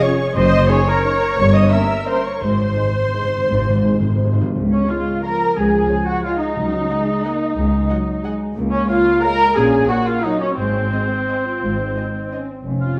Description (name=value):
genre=classical, orchestral ballroom waltz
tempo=160-193 BPM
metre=3/4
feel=rubato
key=Db major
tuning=A4 = 439 Hz
part: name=muted studio violin section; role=melody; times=0.0-12.4 s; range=F5 to E6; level=-33 LUFS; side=equal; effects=none
part: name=mellow hollow silver concert flute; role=second line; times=0.0-12.9 s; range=Ab4 to Bb5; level=-28 LUFS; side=equal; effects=none
part: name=muted studio violin section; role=second line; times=0.0-12.4 s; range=Ab4 to Gb5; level=-33 LUFS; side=equal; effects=none
part: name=muted studio viola section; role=accompaniment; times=0.0-13.0 s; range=C4 to Eb5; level=-23 LUFS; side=equal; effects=none
part: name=dark French horn section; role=sustained chords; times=0.0-13.0 s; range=F3 to F4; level=-28 LUFS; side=equal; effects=none
part: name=dark trumpet section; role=stabs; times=0.0-4.4 s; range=Ab4 to E5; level=-27 LUFS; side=equal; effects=none
part: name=muted studio cello section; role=bass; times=0.4-12.9 s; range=Db2 to Bb2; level=-25 LUFS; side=equal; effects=none
part: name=muted studio double bass section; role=bass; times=0.4-12.9 s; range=F1 to Db2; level=-26 LUFS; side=equal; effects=none
part: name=timpani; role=percussion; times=2.4-7.0 s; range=Ab2 to Db3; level=-25 LUFS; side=equal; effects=none
part: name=warm oboe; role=second line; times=4.7-13.0 s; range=C5 to Bb5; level=-28 LUFS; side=equal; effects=none
room=wet recital hall reverb, RT60 1.5 s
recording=none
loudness=-18 LUFS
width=mono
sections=0.0-4.6 A section; 4.6-13.0 B section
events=timpani fill 2.4-4.6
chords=0.4 Ebm7/Gb; 1.4 Gdim7; 2.4 Ab; 4.6 Db; 6.6 Ab5/Db; 8.6 Db; 9.6 Gb/Bb; 10.6 Ab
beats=0.02 | 0.35 0.69 1.04 | 1.38 1.71 2.07 | 2.42 2.77 3.14 | 3.49 3.84 4.21 | 4.56 4.89 5.24 | 5.57 5.90 6.25 | 6.57 6.90 7.24 | 7.56 7.89 8.24 | 8.56 8.89 9.23 | 9.56 9.89 10.24 | 10.57 10.92 11.28 | 11.62 11.96 12.31 | 12.64